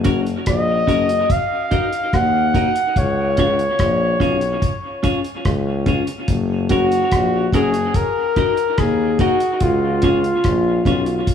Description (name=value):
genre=roots reggae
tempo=72 BPM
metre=4/4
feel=straight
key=unclear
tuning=A4 = 441 Hz
part: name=clean electric guitar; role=accompaniment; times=0.0-11.1 s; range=C#4 to D#5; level=-23 LUFS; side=left 1 dB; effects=dub echo
part: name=warm tuba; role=bass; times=0.0-11.2 s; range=F#1 to D#2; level=-21 LUFS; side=left 3 dB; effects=none
part: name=cloth-damped thuddy drum kit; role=drums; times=0.0-11.3 s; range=hi-hat, kick drum, rim click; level=-21 LUFS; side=left 1 dB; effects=none
part: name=warm flugelhorn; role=melody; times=0.5-11.3 s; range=E#4 to F#5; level=-19 LUFS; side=equal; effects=dub echo
room=moderate stone room reverb, RT60 1.1 s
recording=band playing live in one room, studio ambience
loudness=-15 LUFS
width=side -8 dB against mid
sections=0.0-11.3 A section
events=none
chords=0.0 F#; 1.3 D#m; 3.0 C#; 6.3 F#; 7.9 D#m; 9.6 C#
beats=0.46 1.29 2.13 | 2.96 3.79 4.62 5.45 | 6.28 7.11 7.95 8.78 | 9.61 10.44 11.27